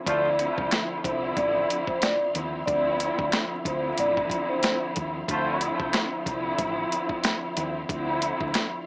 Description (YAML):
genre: hip hop, boom-bap hip-hop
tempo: 92 BPM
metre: 4/4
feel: swing 58% on 16ths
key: D minor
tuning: A4 = 440 Hz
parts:
  - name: vibraphone with soft mallets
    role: melody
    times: 0.1-4.8 s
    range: C5 to D5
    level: -26 LUFS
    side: equal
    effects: high-pass filter, low-pass filter
  - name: warm studio string section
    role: accompaniment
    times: 0.1-8.8 s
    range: D3 to E4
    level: -28 LUFS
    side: equal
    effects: cassette tape, high-pass filter, low-pass filter
  - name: tonewheel organ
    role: sustained chords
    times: 0.1-8.9 s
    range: F3 to C6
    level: -40 LUFS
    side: equal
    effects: none
  - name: warm horn section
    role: stabs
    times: 0.1-0.3, 5.3-5.7 s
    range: A3 to C5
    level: -32 LUFS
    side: equal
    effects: high-pass filter, low-pass filter, digital delay
  - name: deep dub fingered electric bass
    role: bass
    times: 0.1-8.5 s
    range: A1 to Eb2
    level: -36 LUFS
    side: equal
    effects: none
  - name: boom bap sampler-style drum kit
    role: drums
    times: 0.1-8.7 s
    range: hi-hat, kick drum, snare drum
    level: -27 LUFS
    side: equal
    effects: none
  - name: finger snaps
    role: percussion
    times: 0.7-8.7 s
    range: none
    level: -35 LUFS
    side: equal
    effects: none
room: light reverb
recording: vinyl crackle, small speaker sound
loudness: -24 LUFS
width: side -37 dB against mid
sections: 0.1-8.9 A section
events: none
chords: 0.1 Dm9